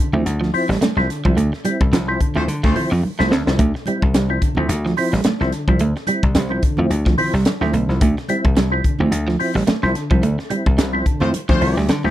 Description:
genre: funk.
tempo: 108 BPM.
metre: 4/4.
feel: swing 56% on 16ths.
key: D minor.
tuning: A4 = 440 Hz.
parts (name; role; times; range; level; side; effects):
percussive tonewheel organ; stabs; 0.0-12.1 s; D3 to E4; -22 LUFS; equal; chorus vibrato, slow rotary speaker.
electric guitar at the edge of break-up; riff; 0.1-12.1 s; F3 to C4; -22 LUFS; right 4 dB; harmonic tremolo.
dry thumbed slap bass; bass; 0.1-12.1 s; A1 to D3; -20 LUFS; left 1 dB; none.
congas; percussion; 0.1-12.1 s; none; -28 LUFS; right 2 dB; none.
crisp fusion drum kit; drums; 0.3-12.1 s; hi-hat, kick drum, snare drum; -20 LUFS; left 1 dB; none.
warm horn section; second line; 2.4-2.8, 11.2-11.8 s; A3 to C5; -25 LUFS; left 4 dB; slapback echo.
room: small room ambience.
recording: none.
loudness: -16 LUFS.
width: side -13 dB against mid.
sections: 0.0-12.1 A section.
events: band accent 1.4-3.6, 10.2-12.1; drum fill 3.0-3.6.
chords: 0.0 Dm9.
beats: 0.26 0.82 | 1.37 1.93 2.48 3.04 | 3.59 4.14 4.70 5.25 | 5.80 6.36 6.91 7.46 | 8.02 8.57 9.12 9.68 | 10.23 10.78 11.34 11.89.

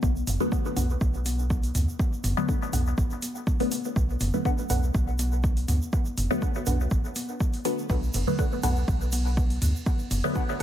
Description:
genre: dub techno.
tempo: 122 BPM.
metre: 4/4.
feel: swing 53% on 16ths.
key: B minor.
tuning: A4 = 440 Hz.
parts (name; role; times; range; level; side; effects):
soft dub sub bass; bass; 0.0-10.6 s; F#1 to D2; -26 LUFS; equal; sidechain pumping.
electronic kick drum; drums; 0.0-10.5 s; none; -26 LUFS; equal; overdrive.
electronic congas and toms; percussion; 0.0-10.6 s; none; -33 LUFS; equal; overdrive, sidechain pumping on toms, sidechain pumping on perc, dub echo.
tube shaker; percussion; 0.0-10.6 s; none; -41 LUFS; right 4 dB; none.
deep house drum kit; drums; 0.3-10.6 s; hi-hat, ride cymbal; -37 LUFS; equal; overdrive.
filtered dub chord stab; stabs; 0.4-10.3 s; D3 to B3; -30 LUFS; left 2 dB; phaser, dub echo.
filtered dub chord stab; riff; 0.5-10.6 s; D4 to F#5; -36 LUFS; right 1 dB; phaser, wide subtle chorus, sidechain pumping, dub echo.
room: little or no reverb.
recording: none.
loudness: -24 LUFS.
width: side -11 dB against mid.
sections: 0.0-10.6 A section.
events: none.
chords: 0.0 Bm7.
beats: | 0.03 0.52 1.01 1.50 | 2.00 2.49 2.98 3.47 | 3.96 4.45 4.95 5.44 | 5.93 6.42 6.91 7.41 | 7.90 8.39 8.88 9.37 | 9.86 10.36.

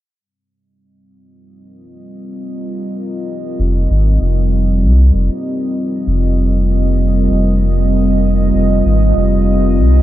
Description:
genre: ambient dub.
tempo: 97 BPM.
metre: 4/4.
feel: swing 54% on 16ths.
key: unclear.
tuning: A4 = 440 Hz.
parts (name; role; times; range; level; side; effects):
deep dark ambient pad; sustained chords; 2.0-10.0 s; G3 to Eb5; -17 LUFS; right 1 dB; chorus, built-in reverb.
warm sub bass; bass; 3.6-10.0 s; F1 to C2; -12 LUFS; equal; none.
room: light reverb.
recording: none.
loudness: -12 LUFS.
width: side -14 dB against mid.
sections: 0.2-5.1 A section; 5.1-10.0 B section.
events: fade-in on ambient pad 0.2-5.1.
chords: 0.2 F7(no3).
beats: | 0.20 0.81 1.43 2.05 | 2.67 3.29 3.91 4.53 | 5.14 5.76 6.38 7.00 | 7.62 8.24 8.86 9.47.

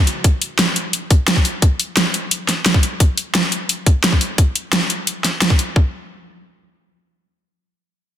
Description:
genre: dark technical drum and bass.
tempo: 174 BPM.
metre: 4/4.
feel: straight.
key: none.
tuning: none.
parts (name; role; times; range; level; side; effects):
dubstep drum kit; drums; 0.1-5.7 s; hi-hat, snare drum; -17 LUFS; equal; none.
electronic kick drum; drums; 0.2-5.8 s; none; -13 LUFS; equal; overdrive.
room: light reverb.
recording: dense, heavily limited modern master.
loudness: -15 LUFS.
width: side -11 dB against mid.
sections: 0.0-5.8 A section; 5.8-8.2 B section.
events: none.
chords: none.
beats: | 0.24 0.59 0.93 1.28 | 1.62 1.97 2.31 2.66 | 3.00 3.35 3.69 4.04 | 4.38 4.73 5.07 5.42 | 5.76.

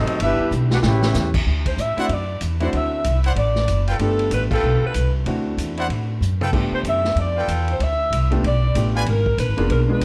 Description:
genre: jazz, big band swing.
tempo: 190 BPM.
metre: 4/4.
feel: swing 61% on 8ths.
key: unclear.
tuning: A4 = 440 Hz.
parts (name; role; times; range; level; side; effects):
warm trumpet section; melody; 0.0-1.3 s; C4 to G5; -26 LUFS; equal; none.
bright trombone section; second line; 0.0-1.3 s; F#3 to G4; -28 LUFS; equal; none.
warm trombone section; sustained chords; 0.0-1.5 s; B2 to G4; -33 LUFS; equal; none.
upright bass; bass; 0.0-10.0 s; E#1 to A2; -23 LUFS; equal; none.
vintage drum kit; drums; 0.1-10.0 s; crash cymbal, hi-hat, kick drum, ride cymbal, snare drum, toms; -30 LUFS; equal; none.
mellow saxophone section; melody; 1.7-10.0 s; A4 to E5; -26 LUFS; equal; none.
clear concert grand piano; accompaniment; 2.0-10.0 s; G#3 to G#4; -28 LUFS; equal; none.
bright trumpet section; stabs; 2.0-9.0 s; E4 to G#5; -30 LUFS; equal; none.
room: light reverb.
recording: dark, warm production.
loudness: -20 LUFS.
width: mono.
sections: 0.0-1.5 A section; 1.5-10.0 B section.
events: drum fill 0.5-1.1, 6.2-6.5; band accent 4.5.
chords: 0.2 Em7; 0.8 A9; 1.5 D9; 4.0 G9; 5.3 D9; 6.5 G9; 9.1 G#dim7.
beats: | 0.20 0.52 0.83 1.15 | 1.46 1.78 2.10 2.41 | 2.73 3.05 3.37 3.68 | 4.00 4.32 4.63 4.95 | 5.27 5.58 5.90 6.22 | 6.53 6.85 7.17 7.48 | 7.80 8.12 8.43 8.75 | 9.07 9.38 9.70 10.02.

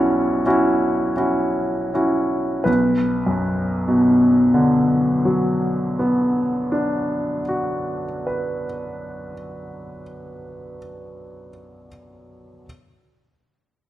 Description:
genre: classical, romantic nocturne for solo piano.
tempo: 31 BPM (dotted quarters).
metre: 12/8.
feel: rubato.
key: B minor.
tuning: A4 = 440 Hz.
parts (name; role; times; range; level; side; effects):
clear baby grand piano; solo; 0.0-12.7 s; B1 to C#5; -18 LUFS; equal; none.
room: wet recital hall reverb, RT60 1.6 s.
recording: lossy compression artefacts.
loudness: -17 LUFS.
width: side -14 dB against mid.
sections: 0.0-2.7 A section; 2.7-10.4 B section.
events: slowing down 0.0-2.7.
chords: 0.0 F#7(no3)/B; 2.7 Bm.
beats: 0.45 | 2.65 4.57 6.55 8.48.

